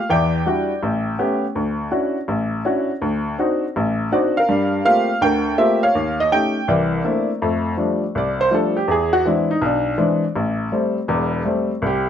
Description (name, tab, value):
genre	solo jazz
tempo	164 BPM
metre	4/4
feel	swing 65% on 8ths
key	D minor, F major from 7.4 s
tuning	A4 = 440 Hz
part	warm upright piano	solo	0.0-12.1 s	E1 to G5	-17 LUFS	equal	none
room	light reverb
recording	close, detailed microphones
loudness	-17 LUFS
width	side -9 dB against mid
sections	0.0-7.4 A section; 7.4-12.1 B section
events	upright piano solo 7.4-12.1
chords	0.1 Em9; 0.8 A9; 1.6 Dmaj9; 3.0 D7b9; 4.5 Gm11; 5.9 Eb7#11; 6.7 C13; 7.4 F69; 8.9 E7b13; 10.3 Am7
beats	| 0.08 0.45 0.82 1.18 | 1.55 1.92 2.28 2.65 | 3.02 3.38 3.75 4.12 | 4.48 4.85 5.21 5.58 | 5.95 6.31 6.68 7.05 | 7.41 7.78 8.15 8.51 | 8.88 9.25 9.62 9.98 | 10.35 10.72 11.08 11.45 | 11.82